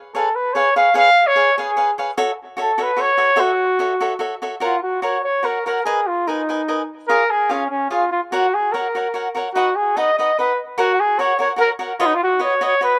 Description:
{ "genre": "mexican folk, mariachi", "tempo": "147 BPM", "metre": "3/4", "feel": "straight", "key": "F# minor, F# major from 4.6 s", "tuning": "A4 = 440 Hz", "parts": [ { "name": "cavaquinho", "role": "accompaniment", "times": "0.1-12.9 s", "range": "D#4 to G#5", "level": "-25 LUFS", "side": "equal", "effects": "slapback echo" }, { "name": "mellow trumpet", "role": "melody", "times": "0.2-13.0 s", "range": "C#4 to E#5", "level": "-19 LUFS", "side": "equal", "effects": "slapback echo" } ], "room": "little or no reverb", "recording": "recorded outdoors, with no room sound", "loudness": "-18 LUFS", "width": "mono", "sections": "0.0-4.6 A section; 4.6-13.0 B section", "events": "none", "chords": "0.0 C#7; 2.2 F#m7; 4.6 F#; 5.9 G#madd9; 7.1 C#; 8.3 F#; 9.6 B; 10.8 F#; 12.0 Badd9", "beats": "0.14 0.56 | 0.97 1.37 1.78 | 2.18 2.58 2.99 | 3.39 3.80 4.21 | 4.63 5.04 5.46 | 5.87 6.28 6.68 | 7.09 7.50 7.91 | 8.32 8.73 9.14 | 9.56 9.97 10.38 | 10.79 11.20 11.60 | 12.00 12.41 12.82" }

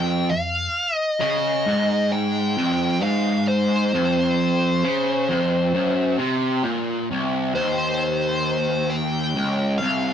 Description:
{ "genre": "metal", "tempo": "66 BPM", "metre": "4/4", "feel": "straight", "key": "C minor", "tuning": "A4 = 437 Hz", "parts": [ { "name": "fuzz lead guitar", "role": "melody", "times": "0.0-10.1 s", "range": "C5 to G5", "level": "-23 LUFS", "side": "left 1 dB", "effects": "wah, distortion" }, { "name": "fuzz guitar", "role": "riff", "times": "0.0-10.1 s", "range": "C2 to Db3", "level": "-21 LUFS", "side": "equal", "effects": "distortion" } ], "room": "moderate small room reverb, RT60 0.5 s", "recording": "rough rehearsal-room recording", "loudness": "-19 LUFS", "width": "side -8 dB against mid", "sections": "0.0-7.1 A section; 7.1-10.1 B section", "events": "none", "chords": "0.0 F5; 7.1 Cm", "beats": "0.75 1.66 2.56 | 3.47 4.38 5.28 6.19 | 7.09 8.00 8.91 9.81" }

